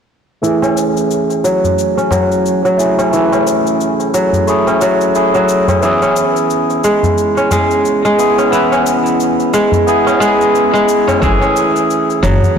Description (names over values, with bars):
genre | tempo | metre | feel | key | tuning
organic downtempo | 89 BPM | 4/4 | swing 58% on 16ths | F# minor | A4 = 439 Hz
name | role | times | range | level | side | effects
barky tine electric piano | accompaniment | 0.4-12.6 s | A3 to B4 | -15 LUFS | equal | phaser, sidechain pumping, low-pass filter, digital delay
kora | arpeggios | 0.4-12.6 s | E3 to C#4 | -13 LUFS | right 1 dB | low-pass filter, digital delay
cabasa and congas | drums | 0.4-12.5 s | none | -28 LUFS | left 7 dB | overdrive
tabla | percussion | 0.6-12.5 s | none | -22 LUFS | left 2 dB | none
upright bass | bass | 11.2-12.4 s | F#1 | -14 LUFS | equal | sidechain pumping
electronic kick drum | drums | 11.2-11.4 s | none | -17 LUFS | equal | overdrive
room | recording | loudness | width
moderate lush hall reverb, RT60 3.0 s | blown-out, overdriven recording, overdrive | -10 LUFS | side -7 dB against mid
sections
0.4-12.6 A section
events
filter sweep on kora 0.4-12.6; filter sweep on tine electric piano 0.4-12.6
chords
0.4 F#m7; 5.8 C#m7; 11.2 F#m7